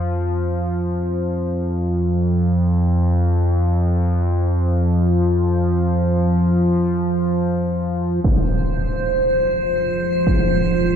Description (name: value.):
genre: dark ambient drone.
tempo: free time.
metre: none.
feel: none.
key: F minor.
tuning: A4 = 440 Hz.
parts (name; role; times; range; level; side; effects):
analog drone; drone; 0.0-11.0 s; F2 to F3; -18 LUFS; equal; chorus.
deep dark ambient pad; sustained chords; 9.3-11.0 s; F4 to Ab4; -23 LUFS; right 5 dB; chorus, built-in reverb.
impact; percussion; 8.2-10.5 s; none; -21 LUFS; equal; low-pass filter on sfx.
icy glass pad; texture; 8.5-11.0 s; C5; -20 LUFS; equal; chorus, built-in reverb.
room: wet huge ambient reverb, RT60 7.9 s.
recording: none.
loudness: -17 LUFS.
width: side -8 dB against mid.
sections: 0.0-8.2 A section; 8.2-11.0 B section.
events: none.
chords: 0.0 N.C.; 8.2 Fm.